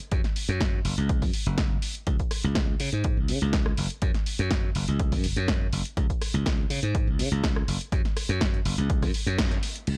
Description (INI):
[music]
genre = filtered disco house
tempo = 123 BPM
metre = 4/4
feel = straight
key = unclear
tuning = A4 = 439 Hz
[part]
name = punchy analog drum machine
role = drums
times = 0.0-10.0 s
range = crash cymbal, hi-hat, rim click, snare drum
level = -34 LUFS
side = equal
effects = sidechain pumping on hats, sidechain pumping on cymbals
[part]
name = glassy slap bass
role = bass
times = 0.1-10.0 s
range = Gb1 to Db3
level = -30 LUFS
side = equal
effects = sidechain pumping, low-pass filter
[part]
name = electronic kick drum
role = drums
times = 0.1-9.5 s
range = none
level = -30 LUFS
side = equal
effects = none
[sound]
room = digital ambience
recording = dry, gritty hardware recording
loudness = -26 LUFS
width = mono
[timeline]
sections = 0.0-9.9 A section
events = band accent 9.4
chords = none